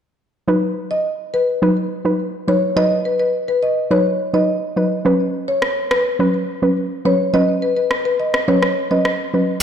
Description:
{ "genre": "dancehall", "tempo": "105 BPM", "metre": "4/4", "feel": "straight", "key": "B major", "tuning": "A4 = 439 Hz", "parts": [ { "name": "soft round pluck", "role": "accompaniment", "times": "0.5-9.5 s", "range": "F#3 to B4", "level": "-18 LUFS", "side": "equal", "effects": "chorus" }, { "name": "marimba with medium mallets", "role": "melody", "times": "0.9-9.0 s", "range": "B4 to D#5", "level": "-19 LUFS", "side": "left 1 dB", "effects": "digital delay" }, { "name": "electronic rim click", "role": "drums", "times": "5.6-9.2 s", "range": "none", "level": "-22 LUFS", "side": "equal", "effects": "none" } ], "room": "light reverb", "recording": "played on a big sound system in a bare room, large studio reverb", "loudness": "-16 LUFS", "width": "side -8 dB against mid", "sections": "0.5-9.6 A section", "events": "none", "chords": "0.5 B; 5.1 F#sus4" }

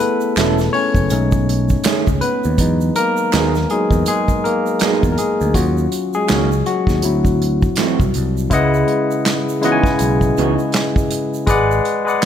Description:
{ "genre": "R&B, neo-soul", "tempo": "81 BPM", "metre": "4/4", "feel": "swing 59% on 16ths", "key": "C# dorian", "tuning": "A4 = 440 Hz", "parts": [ { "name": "barky tine electric piano", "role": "accompaniment", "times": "0.0-12.3 s", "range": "C#3 to G#5", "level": "-17 LUFS", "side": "left 2 dB", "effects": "overdrive" }, { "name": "unplugged drum kit", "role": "drums", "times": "0.0-12.3 s", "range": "handclaps, hi-hat, kick drum, snare drum", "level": "-19 LUFS", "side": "right 1 dB", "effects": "none" }, { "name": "tube shaker and finger snaps", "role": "percussion", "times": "0.2-12.3 s", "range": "none", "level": "-33 LUFS", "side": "right 8 dB", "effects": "none" }, { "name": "electric guitar through a small old amp", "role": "second line", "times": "0.4-10.5 s", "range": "D#3 to A4", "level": "-22 LUFS", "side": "right 7 dB", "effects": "none" }, { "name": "picked electric bass", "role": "bass", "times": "0.4-11.8 s", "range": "E1 to E2", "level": "-19 LUFS", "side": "right 1 dB", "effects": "none" } ], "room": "light reverb", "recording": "none", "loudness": "-14 LUFS", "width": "side -9 dB against mid", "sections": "0.0-8.5 A section; 8.5-12.3 B section", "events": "tine electric piano solo 0.0-8.5", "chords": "0.0 F#m7 (rootless); 1.1 B13; 2.6 Emaj9; 5.5 D#m7; 7.0 D9; 8.5 C#m11; 11.5 G#m7b5" }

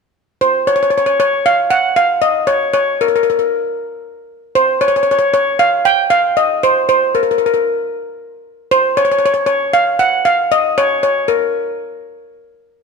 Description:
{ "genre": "calypso", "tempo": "116 BPM", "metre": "4/4", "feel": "straight", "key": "Db major", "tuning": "A4 = 440 Hz", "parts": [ { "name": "steel pan", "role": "solo", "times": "0.4-11.8 s", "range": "Bb4 to G5", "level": "-12 LUFS", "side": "equal", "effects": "none" } ], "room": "moderate scoring stage reverb, RT60 1.6 s", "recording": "close, detailed microphones", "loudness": "-12 LUFS", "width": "side -4 dB against mid", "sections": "0.4-12.8 A section", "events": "none", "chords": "none" }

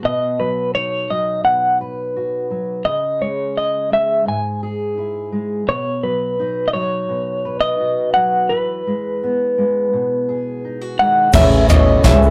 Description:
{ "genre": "indie folk with a building arrangement", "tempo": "85 BPM", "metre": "4/4", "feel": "straight", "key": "B major", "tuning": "A4 = 440 Hz", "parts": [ { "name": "fingerpicked steel-string acoustic guitar", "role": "accompaniment", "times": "0.0-12.3 s", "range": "G#2 to B4", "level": "-25 LUFS", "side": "equal", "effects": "none" }, { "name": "clean electric guitar", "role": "melody", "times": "0.1-12.3 s", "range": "B4 to G#5", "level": "-20 LUFS", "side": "equal", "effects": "tremolo" }, { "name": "warm French horn", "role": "second line", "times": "11.0-12.3 s", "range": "B2 to D#3", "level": "-24 LUFS", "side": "equal", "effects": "none" }, { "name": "clear upright piano", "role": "accompaniment", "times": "11.3-12.3 s", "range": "A1 to E5", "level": "-27 LUFS", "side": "equal", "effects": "none" }, { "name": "picked old ladder-braced acoustic guitar", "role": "accompaniment", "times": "11.3-12.3 s", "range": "A3 to B4", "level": "-24 LUFS", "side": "equal", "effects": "none" }, { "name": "dark chamber string section", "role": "sustained chords", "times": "11.3-12.3 s", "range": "C#3 to C#4", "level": "-30 LUFS", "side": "equal", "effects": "none" }, { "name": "vibraphone with soft mallets", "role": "arpeggios", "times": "11.3-12.3 s", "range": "C#5 to C#6", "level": "-25 LUFS", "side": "equal", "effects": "none" }, { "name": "deep dub fingered electric bass", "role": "bass", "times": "11.3-12.3 s", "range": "A1 to C#2", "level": "-18 LUFS", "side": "equal", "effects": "none" }, { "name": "soft brush drum kit", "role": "drums", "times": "11.3-12.2 s", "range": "crash cymbal, kick drum, snare drum, toms", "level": "-15 LUFS", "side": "equal", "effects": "none" }, { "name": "tube shaker", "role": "percussion", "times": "11.3-12.3 s", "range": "none", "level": "-38 LUFS", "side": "equal", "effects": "none" } ], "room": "moderate small room reverb, RT60 0.6 s", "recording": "rough rehearsal-room recording, tube saturation", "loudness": "-18 LUFS", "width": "mono", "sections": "0.0-11.3 A section", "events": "none", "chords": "0.0 B; 2.9 C#m; 5.7 Badd9; 8.5 Eadd9; 11.3 Aadd9" }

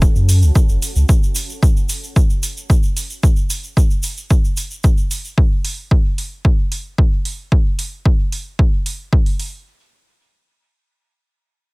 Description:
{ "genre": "dub techno", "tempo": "112 BPM", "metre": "4/4", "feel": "straight", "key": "F# minor", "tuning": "A4 = 440 Hz", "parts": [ { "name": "granular cloud pad", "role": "sustained chords", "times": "0.0-1.1 s", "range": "C#4 to A4", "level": "-36 LUFS", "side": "right 1 dB", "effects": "built-in reverb, sidechain pumping" }, { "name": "warm sub bass", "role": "bass", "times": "0.0-1.0 s", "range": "F#1 to F#2", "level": "-13 LUFS", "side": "equal", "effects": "tube saturation, sidechain pumping" }, { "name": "electronic kick drum", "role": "drums", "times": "0.0-9.2 s", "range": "none", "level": "-14 LUFS", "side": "equal", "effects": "none" }, { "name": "egg shaker", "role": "percussion", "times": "0.0-5.4 s", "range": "none", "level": "-28 LUFS", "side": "right 1 dB", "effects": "none" }, { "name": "electronic hi-hat", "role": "drums", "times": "0.3-9.5 s", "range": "none", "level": "-27 LUFS", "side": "right 2 dB", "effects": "none" } ], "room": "little or no reverb", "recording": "none", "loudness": "-14 LUFS", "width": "side -29 dB against mid", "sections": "0.0-9.7 A section", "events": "none", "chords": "0.0 F#m" }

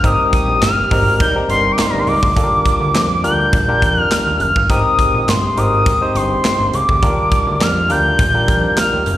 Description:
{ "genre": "early-eighties boogie funk", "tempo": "103 BPM", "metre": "4/4", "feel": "straight", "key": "Eb major", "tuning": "A4 = 440 Hz", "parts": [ { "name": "expressive synth lead", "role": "melody", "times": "0.0-9.2 s", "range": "Bb5 to G6", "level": "-16 LUFS", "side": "left 1 dB", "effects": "chorus, slapback echo, plate reverb" }, { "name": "barky tine electric piano", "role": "accompaniment", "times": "0.0-9.1 s", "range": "C4 to C5", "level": "-21 LUFS", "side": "left 1 dB", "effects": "overdrive, plate reverb, slapback echo" }, { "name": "brassy analog pad", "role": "sustained chords", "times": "0.0-9.2 s", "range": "C3 to G4", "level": "-27 LUFS", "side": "equal", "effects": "chorus" }, { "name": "fat analog bass", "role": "bass", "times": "0.0-9.2 s", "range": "Gb1 to F2", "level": "-19 LUFS", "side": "equal", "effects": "none" }, { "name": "modern studio drum kit", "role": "drums", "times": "0.0-9.2 s", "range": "handclaps, hi-hat, kick drum, snare drum", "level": "-18 LUFS", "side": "equal", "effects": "none" }, { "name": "analog synth brass", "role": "second line", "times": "0.9-2.2 s", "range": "G3 to Bb4", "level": "-23 LUFS", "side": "right 1 dB", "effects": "chorus, slapback echo, plate reverb" } ], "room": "light reverb", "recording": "live gig heard through the venue's PA, recital hall reverb", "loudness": "-12 LUFS", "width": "side -13 dB against mid", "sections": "0.0-9.2 A section", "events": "band accent 0.0-2.4", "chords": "0.0 Abmaj9; 2.4 Ebmaj9; 4.7 Abmaj9; 7.0 Ebmaj9" }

